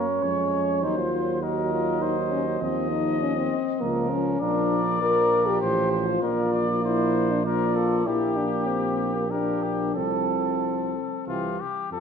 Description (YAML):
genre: classical, brass quintet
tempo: 99 BPM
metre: 3/4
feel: rubato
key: F major from 4.4 s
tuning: A4 = 444 Hz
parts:
  - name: mellow trumpet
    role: melody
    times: 0.0-12.0 s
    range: F4 to Eb5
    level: -30 LUFS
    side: left 7 dB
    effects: none
  - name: warm flugelhorn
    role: second line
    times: 0.0-12.0 s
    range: G4 to Eb5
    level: -30 LUFS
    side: right 8 dB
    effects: none
  - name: clear trombone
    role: accompaniment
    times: 0.0-12.0 s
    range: E3 to Bb3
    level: -31 LUFS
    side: right 2 dB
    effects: none
  - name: warm French horn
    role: accompaniment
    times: 0.0-12.0 s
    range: Bb3 to Bb4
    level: -26 LUFS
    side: left 4 dB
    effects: none
  - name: mellow tuba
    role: bass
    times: 0.0-12.0 s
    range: A1 to Gb2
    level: -30 LUFS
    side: right 4 dB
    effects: none
room: wet recital hall reverb, RT60 1.6 s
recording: minimal, uncompressed stereo recording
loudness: -22 LUFS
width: side -6 dB against mid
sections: 0.0-11.9 A section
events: none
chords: 0.0 Gb; 0.8 Cdim/Eb; 2.6 Dbmaj9/Eb (rootless); 3.8 Bbm/Db; 4.4 Bb; 5.6 F/A; 6.2 Bb; 8.1 Gm/Bb; 10.0 F/C; 11.3 C